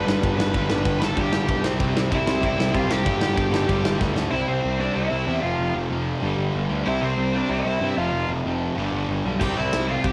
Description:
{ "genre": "punk rock", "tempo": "189 BPM", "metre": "4/4", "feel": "straight", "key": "unclear", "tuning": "A4 = 437 Hz", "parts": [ { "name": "high-gain lead guitar", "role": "melody", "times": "0.0-10.1 s", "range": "C4 to B5", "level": "-29 LUFS", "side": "equal", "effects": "distortion, cassette tape" }, { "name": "overdriven electric guitar", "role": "riff", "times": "0.0-10.1 s", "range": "F2 to C4", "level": "-35 LUFS", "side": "equal", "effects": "none" }, { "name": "overdriven semi-hollow guitar", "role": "riff", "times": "0.0-10.1 s", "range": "F2 to C4", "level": "-31 LUFS", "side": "equal", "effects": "none" }, { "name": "sludgy distorted guitar", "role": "riff", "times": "0.0-10.1 s", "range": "F2 to C4", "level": "-30 LUFS", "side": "equal", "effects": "overdrive" }, { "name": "fuzz picked electric bass", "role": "bass", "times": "0.0-10.1 s", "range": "F1 to G2", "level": "-30 LUFS", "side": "equal", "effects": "overdrive" }, { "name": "big rock drum kit", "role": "drums", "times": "0.1-4.2, 9.4-10.1 s", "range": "crash cymbal, kick drum, ride cymbal, snare drum", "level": "-28 LUFS", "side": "equal", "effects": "none" } ], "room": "small room ambience", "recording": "home recording on cassette", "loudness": "-23 LUFS", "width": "mono", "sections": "0.0-4.3 A section; 4.3-10.1 B section", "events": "drum fill 4.0-4.3; half time 4.3-10.1", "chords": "0.0 G; 1.6 C; 3.1 G5; 4.3 C; 5.4 F5; 6.2 G5; 6.9 C; 8.0 F5; 8.8 G; 9.4 C", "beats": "0.23 | 0.55 0.86 1.17 1.49 | 1.80 2.11 2.43 2.74 | 3.06 3.37 3.69 4.00 | 4.32 4.64 4.95 5.27 | 5.59 5.90 6.22 6.54 | 6.86 7.18 7.50 7.81 | 8.13 8.45 8.77 9.09 | 9.41 9.72 10.04" }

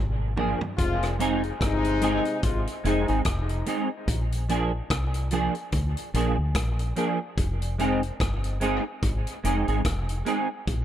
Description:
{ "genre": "dub reggae", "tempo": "73 BPM", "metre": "4/4", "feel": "swing 58% on 16ths", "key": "F dorian", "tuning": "A4 = 440 Hz", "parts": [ { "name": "deep dub fingered electric bass", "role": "bass", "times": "0.0-10.8 s", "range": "F1 to D2", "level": "-27 LUFS", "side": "equal", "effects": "none" }, { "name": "semi-hollow electric guitar", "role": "accompaniment", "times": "0.4-10.5 s", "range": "F3 to Ab4", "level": "-28 LUFS", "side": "right 2 dB", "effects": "ensemble chorus, dub echo" }, { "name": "vintage drum kit", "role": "drums", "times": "0.4-10.8 s", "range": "hi-hat, kick drum, rim click, toms", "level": "-30 LUFS", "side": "equal", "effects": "none" }, { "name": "warm horn section", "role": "second line", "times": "0.8-3.2 s", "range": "C3 to F4", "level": "-29 LUFS", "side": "left 3 dB", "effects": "dub echo" } ], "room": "light reverb, small room ambience", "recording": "none", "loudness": "-24 LUFS", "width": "side -11 dB against mid", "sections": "0.8-10.8 A section", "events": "drum fill 0.0-0.8", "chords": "0.0 Bb7; 0.8 Fm7; 4.1 Bb7; 7.4 Fm7", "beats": "| 0.78 1.61 2.43 3.25 | 4.08 4.90 5.73 6.55 | 7.38 8.20 9.02 9.85 | 10.67" }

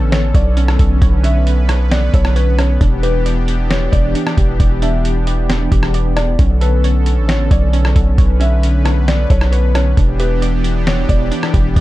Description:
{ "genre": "hip hop, atmospheric cloud-rap", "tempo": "134 BPM", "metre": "4/4", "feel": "half-time", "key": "B minor", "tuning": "A4 = 440 Hz", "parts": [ { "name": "warm analog pad", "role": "sustained chords", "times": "0.0-11.8 s", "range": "D3 to B4", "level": "-21 LUFS", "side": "left 1 dB", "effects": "chorus, tremolo, sidechain pumping" }, { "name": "hollow square pluck", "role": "arpeggios", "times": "0.0-11.8 s", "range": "C#4 to D5", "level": "-29 LUFS", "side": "right 9 dB", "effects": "chorus, digital delay" }, { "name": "long sustained 808-style bass", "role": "bass", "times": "0.0-11.8 s", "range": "E1 to B1", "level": "-14 LUFS", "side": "equal", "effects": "none" }, { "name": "felt-muted upright piano", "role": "melody", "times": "0.1-11.3 s", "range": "B4 to E5", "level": "-24 LUFS", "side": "left 2 dB", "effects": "digital delay" }, { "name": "lo-fi sampler-style drum kit", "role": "drums", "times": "0.1-11.8 s", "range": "hi-hat, kick drum, rim click, snare drum", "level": "-16 LUFS", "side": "equal", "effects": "none" } ], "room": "little or no reverb", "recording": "dark, warm production", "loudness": "-12 LUFS", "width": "side -16 dB against mid", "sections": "0.0-11.8 A section", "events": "none", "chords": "0.0 Bm9; 2.8 Em7; 6.4 Bm9; 10.0 Em7", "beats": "0.12 0.57 | 1.02 1.47 1.91 2.36 | 2.81 3.26 3.70 4.15 | 4.60 5.05 5.50 5.94 | 6.39 6.84 7.29 7.73 | 8.18 8.63 9.08 9.53 | 9.97 10.42 10.87 11.32 | 11.76" }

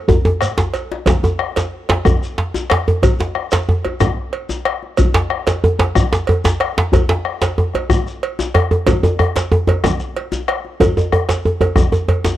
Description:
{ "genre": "west african traditional, West African drum ensemble", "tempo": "123 BPM (dotted quarters)", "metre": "12/8", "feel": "straight", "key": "none", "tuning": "none", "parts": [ { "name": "bombo", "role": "percussion", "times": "0.1-12.0 s", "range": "none", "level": "-20 LUFS", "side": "left 2 dB", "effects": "none" }, { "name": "djembe", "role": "percussion", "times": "0.1-12.4 s", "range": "none", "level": "-21 LUFS", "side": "left 2 dB", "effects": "none" }, { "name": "djembe", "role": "percussion", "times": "0.1-12.4 s", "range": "none", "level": "-15 LUFS", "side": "right 1 dB", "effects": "none" }, { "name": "shekere", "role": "percussion", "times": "0.1-12.4 s", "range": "none", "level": "-25 LUFS", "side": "left 1 dB", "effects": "none" }, { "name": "cowbell", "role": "percussion", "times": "0.4-12.2 s", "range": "none", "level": "-23 LUFS", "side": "right 7 dB", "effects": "none" } ], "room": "studio reverb", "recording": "dry, close 1970s-style studio recording", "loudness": "-14 LUFS", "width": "side -13 dB against mid", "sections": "0.0-1.1 A section; 1.1-12.4 B section", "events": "drum fill 0.0-1.1", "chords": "none", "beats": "0.09 0.58 | 1.07 1.56 2.05 2.54 | 3.03 3.52 4.01 4.50 | 4.99 5.48 5.96 6.45 | 6.93 7.42 7.91 8.39 | 8.87 9.36 9.84 10.32 | 10.80 11.28 11.76 12.24" }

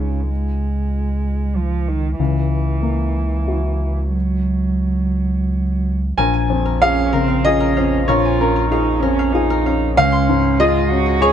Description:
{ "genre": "neoclassical piano and strings", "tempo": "86-98 BPM", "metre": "3/4", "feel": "rubato", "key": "unclear", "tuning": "A4 = 437 Hz", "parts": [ { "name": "muted cello", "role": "second line", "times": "0.0-11.3 s", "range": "Db3 to Ab4", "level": "-21 LUFS", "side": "right 6 dB", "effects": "none" }, { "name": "dark baby grand piano", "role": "accompaniment", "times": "0.0-11.3 s", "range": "Bb1 to Ab5", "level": "-17 LUFS", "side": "left 3 dB", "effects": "none" }, { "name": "warm sub bass", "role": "bass", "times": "0.0-11.3 s", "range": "Bb1 to Db2", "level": "-20 LUFS", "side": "equal", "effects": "none" }, { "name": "Celtic harp", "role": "arpeggios", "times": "6.2-11.3 s", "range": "Ab4 to C6", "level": "-26 LUFS", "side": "left 3 dB", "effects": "slapback echo" } ], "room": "light reverb", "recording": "dark, warm production", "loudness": "-15 LUFS", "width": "side -9 dB against mid", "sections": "0.0-6.2 A section; 6.2-11.3 B section", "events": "none", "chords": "0.0 Dbadd9; 2.2 Gb7/Db; 6.2 Bbm7; 10.0 Dbmaj7", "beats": "| 0.30 0.93 1.57 | 2.19 2.82 3.47 | 4.14 4.83 5.51 | 6.18 6.81 7.45 | 8.09 8.71 9.34 | 9.96 10.59 11.20" }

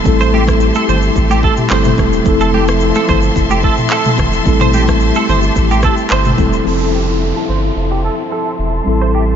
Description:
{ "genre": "afrobeats", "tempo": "109 BPM", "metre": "4/4", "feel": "straight", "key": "F major", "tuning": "A4 = 439 Hz", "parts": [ { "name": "mellow tine electric piano", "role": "accompaniment", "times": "0.0-9.4 s", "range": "F3 to A4", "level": "-16 LUFS", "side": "left 2 dB", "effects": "medium stereo tremolo, low-pass filter" }, { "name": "warm symphonic string section", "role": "sustained chords", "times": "0.0-9.4 s", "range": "F3 to C6", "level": "-21 LUFS", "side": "left 2 dB", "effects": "sidechain pumping, low-pass filter" }, { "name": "saturated sub bass", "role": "bass", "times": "0.1-9.4 s", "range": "E1 to A1", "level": "-16 LUFS", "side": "equal", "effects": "none" }, { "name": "afro-pop drum kit", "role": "drums", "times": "0.1-6.7 s", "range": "handclaps, hi-hat, kick drum, rim click, shaker, toms", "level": "-18 LUFS", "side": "equal", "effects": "none" }, { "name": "direct-recorded clean electric guitar", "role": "riff", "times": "0.2-9.2 s", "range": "G4 to C5", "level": "-19 LUFS", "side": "right 6 dB", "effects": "ensemble chorus, low-pass filter, ping-pong delay" }, { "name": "congas", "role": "percussion", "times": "0.3-6.5 s", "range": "none", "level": "-25 LUFS", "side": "left 4 dB", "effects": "none" }, { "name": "downlifter", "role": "sound effects", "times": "6.7-9.4 s", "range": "none", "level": "-27 LUFS", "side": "right 1 dB", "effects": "none" } ], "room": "moderate cathedral reverb, RT60 5.8 s", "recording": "dreamy mix soaked in reverb, nothing above 7.5 kHz", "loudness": "-11 LUFS", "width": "side -8 dB against mid", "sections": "0.0-6.7 A section; 6.7-9.4 B section", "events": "filter sweep 6.7-9.4", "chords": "0.1 Am7; 2.3 Fmaj7; 4.5 Am7; 6.7 Fmaj7", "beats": "| 0.06 0.61 1.16 1.71 | 2.26 2.81 3.36 3.91 | 4.46 5.01 5.56 6.11 | 6.66 7.21 7.76 8.31 | 8.86" }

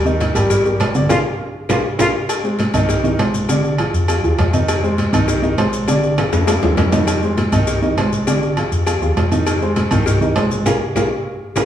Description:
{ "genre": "latin, salsa", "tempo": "201 BPM", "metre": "4/4", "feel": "straight", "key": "unclear", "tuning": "A4 = 440 Hz", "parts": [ { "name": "hollow-body short-scale fingered electric bass", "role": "bass", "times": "0.0-11.7 s", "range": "Bb1 to F2", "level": "-21 LUFS", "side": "equal", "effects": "none" }, { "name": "dark grand piano", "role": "accompaniment", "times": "0.1-11.7 s", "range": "D3 to Eb5", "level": "-18 LUFS", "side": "right 1 dB", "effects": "none" }, { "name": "congas", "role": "percussion", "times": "0.1-11.6 s", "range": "none", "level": "-24 LUFS", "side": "left 1 dB", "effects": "none" }, { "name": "maracas", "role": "percussion", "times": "0.1-11.6 s", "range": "none", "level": "-31 LUFS", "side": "left 4 dB", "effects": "none" }, { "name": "cowbell and bongos", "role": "percussion", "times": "0.2-11.6 s", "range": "none", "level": "-23 LUFS", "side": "left 4 dB", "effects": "none" }, { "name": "timbales and agogo bells", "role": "percussion", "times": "0.2-11.6 s", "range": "none", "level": "-23 LUFS", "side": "right 3 dB", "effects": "none" }, { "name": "bright trombone", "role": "melody", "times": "1.1-2.1 s", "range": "F4", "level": "-22 LUFS", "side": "equal", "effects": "none" } ], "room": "wet large studio reverb, RT60 1.4 s", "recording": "band playing live in one room, small room reverb", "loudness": "-14 LUFS", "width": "side -10 dB against mid", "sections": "0.0-2.3 A section; 2.3-11.7 B section", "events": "band accent 1.1-2.3, 10.7-11.7; drum fill 1.7-2.3, 6.2-7.1, 11.0-11.7", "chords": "0.0 Ebmaj7; 1.1 Bb5; 2.3 Bb9sus4; 3.5 Bb7; 4.7 Fm7; 5.9 Bb7; 7.1 Fm7; 8.3 Bb7; 9.5 Fm7; 10.7 Bb5", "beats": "0.20 0.50 0.80 | 1.10 1.40 1.70 2.00 | 2.29 2.59 2.89 3.19 | 3.49 3.79 4.09 4.38 | 4.68 4.98 5.28 5.58 | 5.88 6.18 6.48 6.77 | 7.07 7.37 7.67 7.97 | 8.27 8.57 8.87 9.17 | 9.47 9.77 10.06 10.36 | 10.66 10.96 11.26 11.56" }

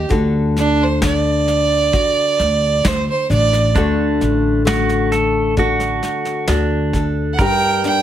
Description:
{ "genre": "folk", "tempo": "66 BPM", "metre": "4/4", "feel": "straight", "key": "unclear", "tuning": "A4 = 440 Hz", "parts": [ { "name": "rich fiddle", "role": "melody", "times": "0.0-8.0 s", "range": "D4 to G5", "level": "-17 LUFS", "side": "right 4 dB", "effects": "none" }, { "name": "nylon-string guitar", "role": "accompaniment", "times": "0.0-8.0 s", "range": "G2 to Bb4", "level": "-20 LUFS", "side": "left 4 dB", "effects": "none" }, { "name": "upright bass", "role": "bass", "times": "0.0-7.3 s", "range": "A1 to D2", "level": "-19 LUFS", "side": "equal", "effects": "none" }, { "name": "soft brush drum kit", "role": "drums", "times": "0.1-8.0 s", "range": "kick drum, snare drum", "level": "-21 LUFS", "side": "equal", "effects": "none" }, { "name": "pedal steel guitar", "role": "second line", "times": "3.8-8.0 s", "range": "D4 to Bb4", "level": "-20 LUFS", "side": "right 5 dB", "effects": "none" } ], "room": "light reverb", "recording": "none", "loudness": "-14 LUFS", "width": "side -11 dB against mid", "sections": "0.0-3.8 A section; 3.8-7.4 B section", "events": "fiddle solo 0.0-3.8", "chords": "0.1 D; 7.4 Gm", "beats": "| 0.11 1.02 1.93 2.84 | 3.75 4.66 5.57 6.48 | 7.39" }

